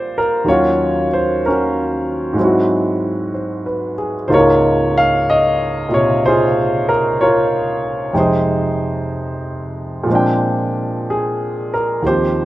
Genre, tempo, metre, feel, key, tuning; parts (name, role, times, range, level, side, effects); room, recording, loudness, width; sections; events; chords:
jazz ballad; 62 BPM; 4/4; swing 66% on 8ths; A4 = 440 Hz
warm concert grand piano; solo; 0.0-12.4 s; Db2 to G5; -14 LUFS; equal
light reverb, small room ambience; rough home demo mix; -14 LUFS; side -16 dB against mid
0.0-12.4 A section
0.5 Ebm9; 2.4 Abaug7; 4.3 Db6; 8.1 Fm7; 10.1 Bb13